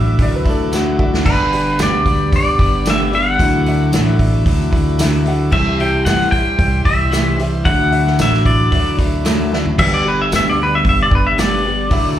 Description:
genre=folk rock and heartland rock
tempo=113 BPM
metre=4/4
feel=straight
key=unclear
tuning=A4 = 443 Hz
part: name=pedal steel guitar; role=melody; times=0.0-12.2 s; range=B4 to G5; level=-17 LUFS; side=left 1 dB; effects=plate reverb, slapback echo
part: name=dark upright piano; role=accompaniment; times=0.0-12.1 s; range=F#4 to F#5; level=-31 LUFS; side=right 2 dB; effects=plate reverb, slapback echo
part: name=picked steel-string acoustic guitar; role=accompaniment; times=0.0-12.2 s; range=G2 to G4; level=-24 LUFS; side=left 6 dB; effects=plate reverb, slapback echo
part: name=bright tonewheel organ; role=sustained chords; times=0.0-9.8 s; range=F#4 to D6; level=-30 LUFS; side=right 1 dB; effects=wide subtle chorus, plate reverb
part: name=electric guitar through a small old amp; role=riff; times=0.0-12.2 s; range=G2 to G4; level=-22 LUFS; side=right 2 dB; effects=slapback echo
part: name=upright bass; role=bass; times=0.0-12.2 s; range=G1 to G2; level=-18 LUFS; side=equal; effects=none
part: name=clear upright piano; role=second line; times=0.2-1.1 s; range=F#4 to D5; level=-24 LUFS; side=equal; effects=plate reverb, slapback echo, digital delay
part: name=unplugged drum kit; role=drums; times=0.2-12.0 s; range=crash cymbal, hi-hat, kick drum, snare drum, toms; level=-18 LUFS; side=right 1 dB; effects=none
part: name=tambourine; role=percussion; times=0.7-11.5 s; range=none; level=-29 LUFS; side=right 4 dB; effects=none
room=little or no reverb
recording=live gig heard through the venue's PA, club reverb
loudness=-12 LUFS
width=side -11 dB against mid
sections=0.0-9.8 A section; 9.8-12.2 B section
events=drum fill 0.7-1.3, 9.5; pedal steel guitar solo 9.8-12.2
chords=0.0 Dadd9; 1.3 G; 3.4 Dadd9; 5.5 C; 7.7 Dadd9; 9.8 G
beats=0.19 0.73 | 1.26 1.79 2.33 2.86 | 3.40 3.93 4.46 5.00 | 5.53 6.06 6.59 7.12 | 7.66 8.19 8.72 9.25 | 9.79 10.32 10.85 11.38 | 11.91

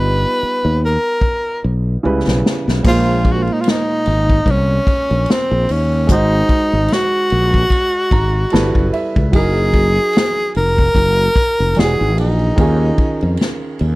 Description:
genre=R&B, neo-soul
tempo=74 BPM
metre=4/4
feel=swing 55% on 16ths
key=Bb minor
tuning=A4 = 440 Hz
part: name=breathy tenor saxophone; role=melody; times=0.0-13.4 s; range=C4 to B4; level=-17 LUFS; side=equal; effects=none
part: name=dark upright piano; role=accompaniment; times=0.0-14.0 s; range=Bb2 to Bb5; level=-22 LUFS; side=right 2 dB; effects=none
part: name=fretless electric bass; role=bass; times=0.0-14.0 s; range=E1 to F2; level=-16 LUFS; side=equal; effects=transformer saturation, wide subtle chorus
part: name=unplugged drum kit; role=drums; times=1.2-14.0 s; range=crash cymbal, hi-hat, kick drum, ride cymbal, snare drum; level=-17 LUFS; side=equal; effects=none
room=little or no reverb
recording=none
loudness=-13 LUFS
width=side -20 dB against mid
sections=0.0-2.8 A section; 2.8-14.0 B section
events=drum fill 0.0-2.8; upright piano fill 7.7-9.3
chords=0.0 G7alt; 2.0 C#m7b5; 2.8 Bbm9; 6.1 Ab7; 8.5 G69; 9.3 Gb69; 11.8 E9; 12.6 Eb9sus4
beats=0.42 1.23 2.04 | 2.85 3.66 4.47 5.28 | 6.09 6.90 7.71 8.52 | 9.34 10.15 10.96 11.77 | 12.58 13.39

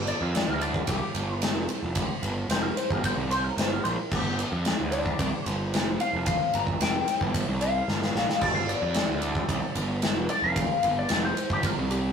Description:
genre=blues rock power trio and southern rock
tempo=112 BPM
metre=4/4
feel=straight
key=G minor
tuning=A4 = 438 Hz
part: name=fuzz picked electric bass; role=bass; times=0.0-12.1 s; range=F1 to F2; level=-30 LUFS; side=right 1 dB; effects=overdrive
part: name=lightly driven lead guitar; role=melody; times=0.1-12.1 s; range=G4 to Bb5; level=-29 LUFS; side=left 3 dB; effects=wah
part: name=big rock drum kit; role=drums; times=0.1-12.0 s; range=crash cymbal, kick drum, ride cymbal, snare drum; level=-28 LUFS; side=equal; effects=none
room=moderate studio reverb, RT60 0.6 s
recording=rough rehearsal-room recording, warm saturation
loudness=-24 LUFS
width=side -7 dB against mid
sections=0.0-12.1 A section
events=lead electric guitar solo 0.0-12.1; drum fill 7.9-8.4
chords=0.0 G5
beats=0.34 0.88 1.42 | 1.96 2.50 3.04 3.57 | 4.11 4.65 5.19 5.72 | 6.26 6.80 7.34 7.88 | 8.41 8.95 9.49 10.03 | 10.56 11.10 11.64

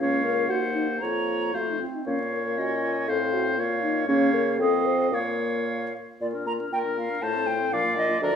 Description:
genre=quick classical-period movement for wind quintet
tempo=110-122 BPM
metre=2/4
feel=rubato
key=Bb minor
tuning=A4 = 440 Hz
part: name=silver concert flute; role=melody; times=0.0-8.4 s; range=D5 to Bb5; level=-30 LUFS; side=equal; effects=none
part: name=clear oboe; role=second line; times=0.0-8.4 s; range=Bb4 to Eb5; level=-29 LUFS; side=equal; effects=none
part: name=dark French horn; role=accompaniment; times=0.0-8.4 s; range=F3 to C5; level=-28 LUFS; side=left 2 dB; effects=none
part: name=mellow clarinet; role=accompaniment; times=0.0-8.4 s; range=A3 to Bb4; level=-33 LUFS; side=right 4 dB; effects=none
part: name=mellow bassoon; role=bass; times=0.0-8.4 s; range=Db2 to Db3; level=-29 LUFS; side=left 2 dB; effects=none
room=moderate recital hall reverb, RT60 1.3 s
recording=vinyl crackle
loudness=-23 LUFS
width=side -7 dB against mid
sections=0.0-6.2 A section; 6.2-8.4 A section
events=none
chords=0.0 Bbm/Db; 0.5 Cm7b5/Eb; 1.0 Bbm/F; 1.5 F; 2.1 Bbm; 3.1 F/A; 3.6 Bbm; 4.1 Bbm/Db; 4.6 F7; 5.1 Bbm; 6.2 Bb; 7.2 F/A; 7.7 Bb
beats=| 0.00 0.50 | 1.02 1.55 | 2.07 2.59 | 3.09 3.59 | 4.09 4.60 | 5.13 5.67 | 6.21 6.72 | 7.22 7.73 | 8.22

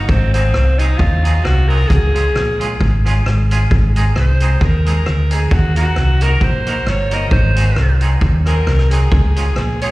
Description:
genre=ska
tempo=133 BPM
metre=4/4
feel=swing 55% on 8ths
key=unclear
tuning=A4 = 441 Hz
part: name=raspy alto saxophone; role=melody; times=0.0-9.9 s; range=C4 to Eb5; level=-21 LUFS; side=equal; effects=dub echo, slapback echo
part: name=hollow-body short-scale fingered electric bass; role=bass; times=0.0-9.9 s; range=G1 to Eb2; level=-14 LUFS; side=equal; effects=none
part: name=street-band drum kit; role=drums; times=0.1-9.9 s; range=hi-hat, kick drum, rim click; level=-19 LUFS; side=equal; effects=dub echo
part: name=clean electric guitar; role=accompaniment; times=0.3-9.9 s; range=Gb3 to Bb4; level=-24 LUFS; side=right 3 dB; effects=tremolo, dub echo, slapback echo
room=small room ambience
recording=live gig heard through the venue's PA, recital hall reverb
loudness=-12 LUFS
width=side -19 dB against mid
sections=0.0-9.9 A section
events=alto saxophone solo 0.0-9.9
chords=0.1 Ab7; 1.9 Db; 3.7 Ab; 5.5 Ebm; 7.3 Ab7; 9.1 Db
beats=| 0.09 0.54 1.00 1.45 | 1.90 2.35 2.81 3.26 | 3.71 4.16 4.61 5.07 | 5.52 5.97 6.42 6.87 | 7.32 7.77 8.22 8.67 | 9.12 9.57

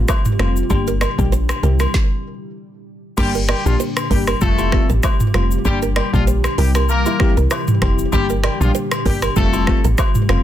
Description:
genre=afrobeats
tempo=97 BPM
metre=4/4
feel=swing 55% on 16ths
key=G dorian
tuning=A4 = 441 Hz
part: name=airy breathy pad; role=sustained chords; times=0.0-10.4 s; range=Bb2 to G4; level=-27 LUFS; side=left 1 dB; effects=chorus
part: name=nylon-string guitar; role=riff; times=0.0-10.4 s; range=E4 to D5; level=-26 LUFS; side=right 11 dB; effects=digital delay
part: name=deep log drum bass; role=bass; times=0.0-10.4 s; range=F1 to C2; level=-18 LUFS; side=equal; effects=none
part: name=afro-pop drum kit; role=drums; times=0.1-10.4 s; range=crash cymbal, finger snaps, hi-hat, kick drum, rim click, shaker, snare drum, toms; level=-19 LUFS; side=equal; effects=soft clipping on snare
part: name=agogo bells and woodblock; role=percussion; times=0.1-10.4 s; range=none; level=-28 LUFS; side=left 6 dB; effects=none
part: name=glassy wavetable pluck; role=accompaniment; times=0.4-10.4 s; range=G3 to G4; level=-23 LUFS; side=left 3 dB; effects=chorus, plate reverb
part: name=clear horn section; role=second line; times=3.2-9.8 s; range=F3 to Bb4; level=-24 LUFS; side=left 3 dB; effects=plate reverb
room=light reverb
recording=dense, heavily limited modern master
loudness=-15 LUFS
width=side -12 dB against mid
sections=0.0-3.2 A section; 3.2-10.4 B section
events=stop 1.9-3.2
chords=0.0 Fadd9; 0.7 Gm; 1.6 C; 3.2 Gm; 4.4 Fadd9; 5.7 Gm; 6.6 C; 8.1 Gm; 9.4 Fadd9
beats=0.09 | 0.70 1.32 1.94 2.56 | 3.18 3.80 4.42 5.04 | 5.65 6.27 6.89 7.51 | 8.13 8.75 9.37 9.98

